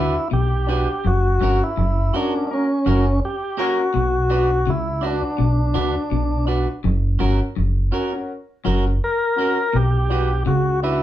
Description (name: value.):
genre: reggae.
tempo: 83 BPM.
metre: 4/4.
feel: swing 56% on 16ths.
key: B harmonic minor.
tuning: A4 = 440 Hz.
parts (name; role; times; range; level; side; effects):
tonewheel organ; melody; 0.0-11.0 s; C#4 to A#4; -21 LUFS; left 1 dB; overdrive.
electric guitar at the edge of break-up; accompaniment; 0.0-11.0 s; C#4 to B4; -26 LUFS; right 4 dB; none.
clean electric guitar; riff; 0.0-10.7 s; F#2 to D3; -25 LUFS; left 3 dB; none.
warm upright piano; stabs; 0.0-11.0 s; C#4 to B4; -29 LUFS; left 3 dB; none.
deep dub fingered electric bass; bass; 0.0-11.0 s; F#1 to D2; -20 LUFS; equal; none.
clear horn section; second line; 2.5-3.8 s; F#3 to A#4; -28 LUFS; left 2 dB; none.
room: wet studio reverb, RT60 0.5 s.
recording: band playing live in one room.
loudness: -18 LUFS.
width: side -13 dB against mid.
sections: 0.0-11.0 A section.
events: band accent 1.0-3.9.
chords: 0.0 Bm; 1.0 F#; 3.9 Bm; 6.8 F#; 9.7 Bm.